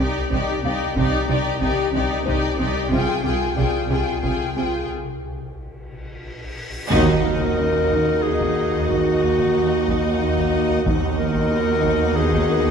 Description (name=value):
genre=cinematic, suspense film score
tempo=92 BPM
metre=3/4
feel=straight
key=Eb minor from 6.9 s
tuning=A4 = 440 Hz
part: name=clear symphonic violin section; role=melody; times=0.0-12.7 s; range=D5 to G5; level=-31 LUFS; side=left 5 dB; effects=none
part: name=clear studio violin section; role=second line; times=0.0-12.7 s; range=G4 to Eb5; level=-28 LUFS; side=left 4 dB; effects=none
part: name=rich symphonic viola section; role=accompaniment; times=0.0-12.7 s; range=Eb4 to F4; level=-28 LUFS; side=right 1 dB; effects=none
part: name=rich symphonic cello section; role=riff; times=0.0-12.7 s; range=C3 to Eb4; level=-28 LUFS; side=right 3 dB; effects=none
part: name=clear symphonic double bass section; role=bass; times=0.0-12.7 s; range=C2 to Eb2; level=-28 LUFS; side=right 4 dB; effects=none
part: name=rich symphonic cello section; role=bass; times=0.0-12.7 s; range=Eb2 to C3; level=-27 LUFS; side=right 3 dB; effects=none
part: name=swarming drone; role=drone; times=0.0-12.7 s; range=Bb1 to Eb2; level=-30 LUFS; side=left 1 dB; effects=built-in reverb
part: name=small celesta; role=texture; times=0.0-12.7 s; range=Db4 to F5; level=-33 LUFS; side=left 6 dB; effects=none
part: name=taiko ensemble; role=drums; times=0.3-12.7 s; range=none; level=-31 LUFS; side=left 1 dB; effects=none
part: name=cymbal swell and impact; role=sound effects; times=6.2-8.9 s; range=none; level=-32 LUFS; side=equal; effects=none
part: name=mellow French horn section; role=sustained chords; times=6.9-12.7 s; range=Bb3 to Gb4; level=-23 LUFS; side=equal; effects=none
part: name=timpani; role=percussion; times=6.9-7.9, 10.9-11.8 s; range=Eb3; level=-31 LUFS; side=left 3 dB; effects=none
part: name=clear clarinet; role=second line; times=7.2-12.7 s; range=Gb4 to Bb4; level=-23 LUFS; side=left 1 dB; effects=none
room=wet concert hall reverb, RT60 2.1 s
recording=dark, warm production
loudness=-18 LUFS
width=side -7 dB against mid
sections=0.0-6.9 A section; 6.9-12.7 B section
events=break 4.9-6.9; cymbal swell 6.2-6.9; band accent 6.9-7.6; impact 6.9-8.9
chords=0.0 Cmadd9; 2.9 Fmadd9/C; 4.9 N.C.; 6.9 Ebm; 10.9 B/D#